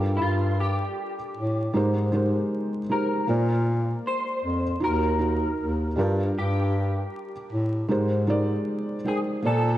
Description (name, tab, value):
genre	lo-fi hip hop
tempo	78 BPM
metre	4/4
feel	swing 57% on 16ths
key	unclear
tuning	A4 = 440 Hz
part	electric guitar through a small old amp	melody	0.0-9.8 s	E4 to C5	-30 LUFS	left 1 dB	ensemble chorus
part	felt-muted upright piano	accompaniment	0.0-9.8 s	G3 to G5	-27 LUFS	right 1 dB	none
part	breathy bass clarinet	bass	0.0-9.8 s	Eb2 to Bb2	-25 LUFS	equal	none
room	moderate lush hall reverb, RT60 2.9 s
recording	dreamy mix soaked in reverb, vinyl crackle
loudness	-23 LUFS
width	side -14 dB against mid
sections	0.0-9.8 A section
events	none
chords	0.0 Gm7; 1.7 Abmaj7; 3.3 Bb; 4.8 Ebm; 6.0 Gm7; 7.9 Abmaj7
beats	| 0.21 0.97 1.75 2.51 | 3.28 4.05 4.82 5.59 | 6.36 7.13 7.90 8.67 | 9.44